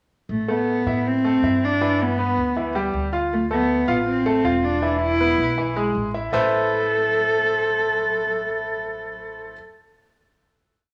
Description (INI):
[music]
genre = latin, Cuban son and guajira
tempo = 159 BPM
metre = 4/4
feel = straight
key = A minor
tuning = A4 = 440 Hz
[part]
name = warm cello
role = melody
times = 0.3-9.5 s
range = A3 to A4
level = -24 LUFS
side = equal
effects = cassette tape
[part]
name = upright bass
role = bass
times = 0.3-9.5 s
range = E1 to A2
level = -32 LUFS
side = equal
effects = none
[part]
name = bright grand piano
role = arpeggios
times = 0.5-9.5 s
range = E3 to F5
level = -27 LUFS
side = equal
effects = cassette tape
[sound]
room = moderate spring reverb, RT60 2.0 s, small room ambience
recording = home recording on cassette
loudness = -21 LUFS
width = mono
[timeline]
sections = 0.3-6.3 verse; 6.3-9.4 final chord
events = none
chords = 0.3 Amadd9; 1.8 G6; 3.3 Dm7; 4.8 E; 6.3 Amadd9